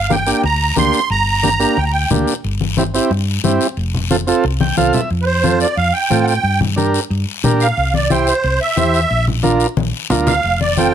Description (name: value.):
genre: latin, cumbia.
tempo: 180 BPM.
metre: 4/4.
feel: straight.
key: unclear.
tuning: A4 = 440 Hz.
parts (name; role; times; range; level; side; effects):
musette accordion; melody; 0.0-2.1, 5.2-10.9 s; B4 to C6; -16 LUFS; right 3 dB; none.
hollow-body short-scale fingered electric bass; bass; 0.0-10.9 s; F1 to Bb2; -19 LUFS; equal; none.
overdriven combo organ; accompaniment; 0.1-10.9 s; Bb3 to G5; -17 LUFS; right 3 dB; none.
congas; percussion; 0.1-10.9 s; none; -20 LUFS; left 5 dB; none.
guiro; percussion; 0.1-10.9 s; none; -26 LUFS; left 9 dB; none.
room: light reverb.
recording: close, detailed microphones.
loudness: -13 LUFS.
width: side -9 dB against mid.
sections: 0.0-5.1 A section; 5.1-10.9 B section.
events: transistor combo organ fill 4.4-5.1; drum fill 4.6-5.1, 9.8-10.4; accordion solo 5.1-10.9.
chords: 0.0 Gm; 2.4 C/G; 3.8 F; 6.4 Gm; 7.8 C; 9.1 Bb; 10.4 F.